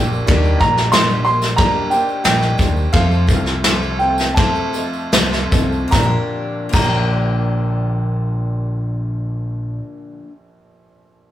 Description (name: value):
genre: indie folk with a building arrangement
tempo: 74-93 BPM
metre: 4/4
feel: straight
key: Bb major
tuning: A4 = 439 Hz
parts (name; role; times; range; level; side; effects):
- dark upright piano; melody; 0.0-9.8 s; F5 to C6; -19 LUFS; right 1 dB; none
- clear concert grand piano; accompaniment; 0.0-11.3 s; F1 to F5; -28 LUFS; right 2 dB; none
- picked twelve-string acoustic guitar; accompaniment; 0.0-10.3 s; Bb2 to A4; -25 LUFS; left 3 dB; none
- fingered electric bass; bass; 0.0-9.8 s; Bb1 to F2; -19 LUFS; equal; none
- tambourine; percussion; 0.1-7.0 s; none; -36 LUFS; right 4 dB; none
- soft brush drum kit; drums; 0.3-7.0 s; crash cymbal, kick drum, ride cymbal, snare drum; -17 LUFS; equal; none
room: moderate studio reverb, RT60 0.6 s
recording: rough rehearsal-room recording, warm saturation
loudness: -14 LUFS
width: side -12 dB against mid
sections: 0.0-5.9 A section; 5.9-9.2 B section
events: slowing down 0.3-5.9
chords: 0.3 Ebmaj7; 2.9 F; 5.9 Bb6